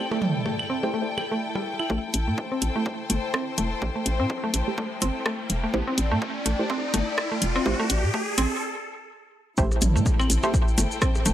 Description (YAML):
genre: minimal techno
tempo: 125 BPM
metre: 4/4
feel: swing 57% on 16ths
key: A minor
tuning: A4 = 442 Hz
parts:
  - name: filtered dub chord stab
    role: stabs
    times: 0.0-10.5 s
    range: A3 to C5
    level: -30 LUFS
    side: right 3 dB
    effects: chorus, cassette tape, digital delay
  - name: warm studio string section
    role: texture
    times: 0.0-11.3 s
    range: E4 to G5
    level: -32 LUFS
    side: left 4 dB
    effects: sidechain pumping
  - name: mallet-like synth pluck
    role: riff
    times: 0.1-11.3 s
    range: G3 to E4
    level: -29 LUFS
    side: equal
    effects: chorus, sidechain pumping, digital delay
  - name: electronic percussion blips, toms and claves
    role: percussion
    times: 0.1-1.9, 9.7-11.2 s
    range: none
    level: -30 LUFS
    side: right 2 dB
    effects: digital delay
  - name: hollow knocking FM bass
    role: bass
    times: 1.9-11.3 s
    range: E1 to A2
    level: -25 LUFS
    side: equal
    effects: sidechain pumping
  - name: electronic kick drum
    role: drums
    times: 1.9-11.1 s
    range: none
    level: -25 LUFS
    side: equal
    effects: high-pass filter on kick
  - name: riser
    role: sound effects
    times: 3.9-8.6 s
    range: none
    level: -32 LUFS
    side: right 1 dB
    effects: none
  - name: house drum kit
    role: drums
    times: 2.1-11.3 s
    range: hi-hat, rim click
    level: -26 LUFS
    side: left 1 dB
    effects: high-pass filter on hats, high-pass filter on snare
  - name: maracas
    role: percussion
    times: 9.6-11.3 s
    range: none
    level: -30 LUFS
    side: left 1 dB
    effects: none
room: light reverb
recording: none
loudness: -23 LUFS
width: side -12 dB against mid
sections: 0.0-1.9 A section; 1.9-9.6 B section; 9.6-11.3 C section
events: filter sweep on synth stab 0.0-1.9, 1.9-9.6; build-up 1.9-9.6; filter sweep on synth arpeggio sound 1.9-9.6; riser 3.9-8.6; break 8.6-9.6; drop 9.6-11.3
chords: 0.0 Am7